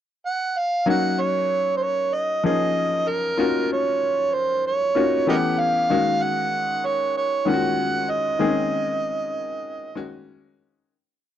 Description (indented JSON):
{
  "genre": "soul",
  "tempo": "96 BPM",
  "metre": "4/4",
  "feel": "straight",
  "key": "Eb minor",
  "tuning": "A4 = 442 Hz",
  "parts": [
    { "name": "overdriven harmonica", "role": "melody", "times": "0.3-10.3 s", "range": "Bb4 to Gb5", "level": "-22 LUFS", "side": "right 2 dB", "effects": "none" },
    { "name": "clear baby grand piano", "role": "accompaniment", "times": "0.9-10.9 s", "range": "Eb3 to Ab4", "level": "-24 LUFS", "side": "left 4 dB", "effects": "none" }
  ],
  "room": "little or no reverb",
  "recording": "dry, close 1970s-style studio recording",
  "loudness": "-20 LUFS",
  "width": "side -10 dB against mid",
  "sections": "0.0-0.9 pickup bar; 0.9-10.9 verse",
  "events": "fade-out 8.4-10.9",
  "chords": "0.0 N.C.; 0.9 Ebm9; 5.3 A9; 5.9 Ab9sus4"
}